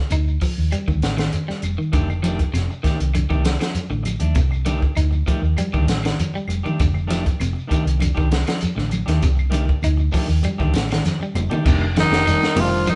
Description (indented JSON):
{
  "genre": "afrobeat",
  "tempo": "99 BPM",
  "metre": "4/4",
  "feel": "straight",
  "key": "F mixolydian",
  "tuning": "A4 = 440 Hz",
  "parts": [
    { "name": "electric guitar at the edge of break-up", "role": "arpeggios", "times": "0.0-13.0 s", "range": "C3 to Eb4", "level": "-28 LUFS", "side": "equal", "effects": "none" },
    { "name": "hollow-body short-scale fingered electric bass", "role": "bass", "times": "0.1-12.9 s", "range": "F1 to Eb2", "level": "-24 LUFS", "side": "equal", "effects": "none" },
    { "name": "compact cocktail drum kit", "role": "drums", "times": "0.1-13.0 s", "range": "crash cymbal, hi-hat, kick drum, snare drum", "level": "-25 LUFS", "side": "equal", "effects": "none" },
    { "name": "claves", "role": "percussion", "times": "0.1-13.0 s", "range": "none", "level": "-42 LUFS", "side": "equal", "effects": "none" },
    { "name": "shekere", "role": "percussion", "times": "0.1-13.0 s", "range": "none", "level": "-32 LUFS", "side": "equal", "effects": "none" },
    { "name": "electric guitar at the edge of break-up", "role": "stabs", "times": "1.9-12.7 s", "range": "Eb3 to G4", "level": "-32 LUFS", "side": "equal", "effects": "none" },
    { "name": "congas", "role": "percussion", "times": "1.9-12.7 s", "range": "none", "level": "-30 LUFS", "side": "equal", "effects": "none" },
    { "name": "raspy tenor saxophone", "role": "melody", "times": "12.0-13.0 s", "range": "Eb4 to F4", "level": "-22 LUFS", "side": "equal", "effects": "none" },
    { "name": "trombone with bucket mute", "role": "second line", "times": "12.0-13.0 s", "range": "Eb3 to F3", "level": "-26 LUFS", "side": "equal", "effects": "none" },
    { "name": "barky tine electric piano", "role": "accompaniment", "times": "12.3-12.9 s", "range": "Eb3 to D4", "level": "-28 LUFS", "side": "equal", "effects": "overdrive" }
  ],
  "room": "moderate stone room reverb, RT60 1.0 s",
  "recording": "band playing live in one room, nothing above 10.7 kHz",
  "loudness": "-20 LUFS",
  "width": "mono",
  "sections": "0.0-11.7 A section; 11.7-13.0 B section",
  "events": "drum fill 11.0-11.7",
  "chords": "0.0 F13",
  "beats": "0.12 0.72 1.33 | 1.94 2.54 3.15 3.76 | 4.36 4.97 5.58 6.18 | 6.79 7.40 8.01 8.62 | 9.22 9.83 10.44 11.05 | 11.65 12.26 12.87"
}